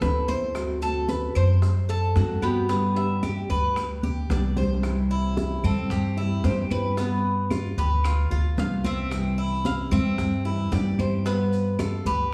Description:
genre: latin, Cuban son and guajira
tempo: 112 BPM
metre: 4/4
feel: straight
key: C major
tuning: A4 = 440 Hz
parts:
  - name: Cuban tres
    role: melody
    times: 0.0-12.3 s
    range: F4 to A5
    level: -35 LUFS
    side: equal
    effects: none
  - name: nylon-string guitar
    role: accompaniment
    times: 0.0-12.3 s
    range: C3 to G4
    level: -32 LUFS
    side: equal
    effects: none
  - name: Cuban tres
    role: arpeggios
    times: 0.0-12.3 s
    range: B3 to C5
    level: -32 LUFS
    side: equal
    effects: none
  - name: upright bass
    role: bass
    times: 0.0-12.3 s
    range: C2 to G2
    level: -28 LUFS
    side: equal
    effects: none
  - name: bongos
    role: percussion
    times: 0.0-12.3 s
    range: none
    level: -39 LUFS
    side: equal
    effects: none
  - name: congas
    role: percussion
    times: 0.0-12.3 s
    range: none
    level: -34 LUFS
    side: equal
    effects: none
  - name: maracas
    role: percussion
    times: 0.0-12.3 s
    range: none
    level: -54 LUFS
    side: equal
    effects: none
  - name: claves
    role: percussion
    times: 0.6-12.1 s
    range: none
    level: -47 LUFS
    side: equal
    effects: none
room: wet large studio reverb, RT60 1.2 s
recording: heard from further back in the room, small room ambience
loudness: -25 LUFS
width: mono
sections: 0.0-4.8 A section; 4.8-12.3 B section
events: drum fill 4.0-4.8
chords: 0.0 Am; 0.5 D7; 2.7 G; 4.8 C; 7.0 G7; 9.1 C; 11.3 G7

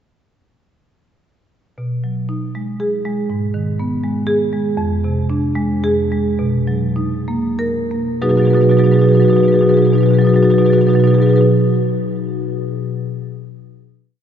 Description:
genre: classical, contemporary piece for solo marimba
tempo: 63-82 BPM (dotted quarters)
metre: 6/8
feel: rubato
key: B lydian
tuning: A4 = 439 Hz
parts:
  - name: marimba with medium hard mallets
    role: solo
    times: 1.8-11.5 s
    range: F2 to B4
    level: -14 LUFS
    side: equal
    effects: none
room: wet cathedral reverb, RT60 6.3 s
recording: heard from further back in the room, nothing above 7.8 kHz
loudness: -13 LUFS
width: side -8 dB against mid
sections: 1.8-8.2 A section; 8.2-11.8 final chord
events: slowing down 4.0-8.2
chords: 1.8 B6; 3.3 G#m; 4.8 Fm6; 6.4 Bmaj7; 8.2 B6

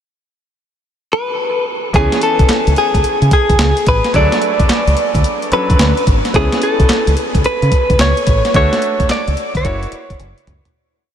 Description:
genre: R&B, new jack swing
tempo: 109 BPM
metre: 4/4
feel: swing 66% on 16ths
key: C# phrygian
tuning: A4 = 440 Hz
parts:
  - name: direct-recorded clean electric guitar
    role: melody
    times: 1.1-10.2 s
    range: G#4 to D5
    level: -15 LUFS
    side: equal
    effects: wide subtle chorus, analog delay
  - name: bright grand piano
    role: accompaniment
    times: 1.9-10.8 s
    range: E3 to G#5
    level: -22 LUFS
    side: right 1 dB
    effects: none
  - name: deep dub fingered electric bass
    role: bass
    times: 1.9-10.6 s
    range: E1 to C#3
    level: -15 LUFS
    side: equal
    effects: none
  - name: clean 12-bit digital drum machine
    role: drums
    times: 1.9-10.7 s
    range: handclaps, hi-hat, kick drum, snare drum, toms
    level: -16 LUFS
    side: equal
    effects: none
room: moderate huge ambient reverb, RT60 6.8 s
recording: dreamy mix soaked in reverb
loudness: -11 LUFS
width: side -9 dB against mid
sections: 0.0-1.9 pickup bar; 1.9-10.7 verse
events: fade-out 8.5-10.7; drum fill 10.2-10.7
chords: 0.0 N.C.; 1.9 C#m7; 4.1 Dmaj7; 6.3 C#m7; 8.5 Dmaj7; 9.6 F#7

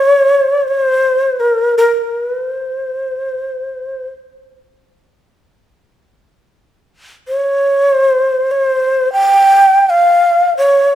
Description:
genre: japanese traditional, Japanese chamber music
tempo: free time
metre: none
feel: none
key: C in sen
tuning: A4 = 441 Hz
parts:
  - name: breathy mellow shakuhachi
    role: solo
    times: 0.0-10.9 s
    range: Bb4 to G5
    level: -11 LUFS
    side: equal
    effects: none
room: moderate scoring stage reverb, RT60 1.6 s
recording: minimal, uncompressed stereo recording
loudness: -11 LUFS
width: side -12 dB against mid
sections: 0.0-10.9 A section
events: none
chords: none

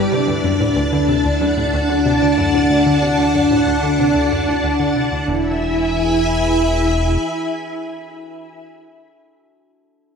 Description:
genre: ambient, sequencer-driven space music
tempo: 93 BPM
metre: 4/4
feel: straight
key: unclear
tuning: A4 = 436 Hz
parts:
  - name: string machine, full ensemble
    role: sustained chords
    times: 0.0-8.6 s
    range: G3 to B5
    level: -16 LUFS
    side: equal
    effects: ensemble chorus
  - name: concert harp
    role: arpeggios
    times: 0.0-7.9 s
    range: D4 to A4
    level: -33 LUFS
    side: moving between left 7 dB and equal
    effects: none
  - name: analog pluck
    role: riff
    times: 0.0-5.6 s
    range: D2 to D3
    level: -22 LUFS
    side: left 1 dB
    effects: chorus, tape echo
  - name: fat analog bass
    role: bass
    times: 0.0-7.2 s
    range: E1 to D2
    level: -24 LUFS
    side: equal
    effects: none
room: wet spring reverb, RT60 2.3 s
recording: echo-heavy mix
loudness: -14 LUFS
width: side -6 dB against mid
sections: 0.0-5.3 A section; 5.3-7.9 B section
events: fade-out on synth arpeggio sound 0.0-5.3; fade-out on analog synth bass 0.0-5.3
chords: 0.1 D; 5.3 E

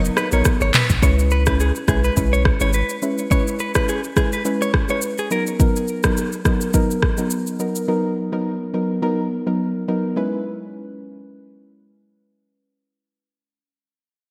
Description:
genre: afrobeats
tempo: 105 BPM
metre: 4/4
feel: swing 55% on 16ths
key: C# dorian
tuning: A4 = 440 Hz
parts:
  - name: breathy alto saxophone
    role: melody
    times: 0.0-0.5 s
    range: D#4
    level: -39 LUFS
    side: equal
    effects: none
  - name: soft round pluck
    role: accompaniment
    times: 0.0-13.6 s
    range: F#3 to B4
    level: -24 LUFS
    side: equal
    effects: chorus
  - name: deep dark ambient pad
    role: sustained chords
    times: 0.2-1.0 s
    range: none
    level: barely audible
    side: none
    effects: none
  - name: punchy sub bass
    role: bass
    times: 0.0-2.8 s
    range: F#1 to C#2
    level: -21 LUFS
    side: equal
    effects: none
  - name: afro-pop drum kit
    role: drums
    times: 0.1-7.9 s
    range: handclaps, hi-hat, kick drum, rim click, shaker, toms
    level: -21 LUFS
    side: equal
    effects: gated reverb
  - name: direct-recorded clean electric guitar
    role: riff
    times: 0.2-5.4 s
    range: G#4 to C#5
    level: -27 LUFS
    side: equal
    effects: delay
room: moderate lush hall reverb, RT60 1.8 s, digital ambience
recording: bright 1980s-style digital production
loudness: -20 LUFS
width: mono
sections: 0.0-1.0 A section; 1.0-10.2 B section; 10.2-12.5 C section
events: none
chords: 0.0 Bmaj7; 1.0 C#m7; 5.3 Bmaj7; 10.2 C#m7

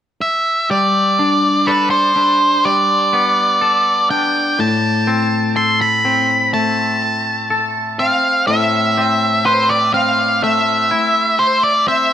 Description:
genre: rock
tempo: 62 BPM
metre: 4/4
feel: straight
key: A minor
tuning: A4 = 440 Hz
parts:
  - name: octave-fuzz lead guitar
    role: melody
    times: 0.2-12.1 s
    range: B4 to C6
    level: -14 LUFS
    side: right 1 dB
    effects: distortion, digital delay
  - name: twangy electric guitar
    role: arpeggios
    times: 0.7-12.1 s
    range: A2 to B4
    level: -18 LUFS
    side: left 2 dB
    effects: lush chorus, digital delay
room: wet large studio reverb, RT60 1.3 s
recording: none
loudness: -13 LUFS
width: side -10 dB against mid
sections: 0.7-12.1 A section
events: none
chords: 0.0 N.C.; 0.7 Gadd9; 4.6 Amadd9

